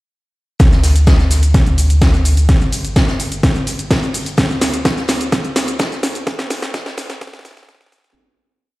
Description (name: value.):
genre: progressive house.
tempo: 127 BPM.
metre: 4/4.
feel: straight.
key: unclear.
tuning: A4 = 440 Hz.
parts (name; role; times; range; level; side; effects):
round analog bass; bass; 0.6-8.1 s; G1 to D2; -16 LUFS; equal; sidechain pumping.
electronic kick drum; drums; 0.6-7.8 s; none; -13 LUFS; equal; overdrive.
house drum kit; drums; 0.6-8.2 s; hi-hat, shaker, snare drum; -19 LUFS; equal; overdrive.
unplugged drum kit; drums; 0.6-8.2 s; hi-hat, snare drum; -28 LUFS; left 1 dB; sidechain pumping on hats, high-pass filter on hats, high-pass filter on snare, high-pass filter on room.
room: light reverb.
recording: played on a big sound system in a bare room, stone room reverb, high-pass filter.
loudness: -12 LUFS.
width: side -20 dB against mid.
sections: 0.6-8.2 build.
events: build-up 0.6-8.2; drum fill 0.6-8.2; filter sweep 0.6-8.2; fade-out 5.6-8.2.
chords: none.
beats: | 0.60 1.07 1.54 2.02 | 2.49 2.96 3.44 3.91 | 4.38 4.85 5.32 5.80 | 6.27 6.74 7.21 7.69.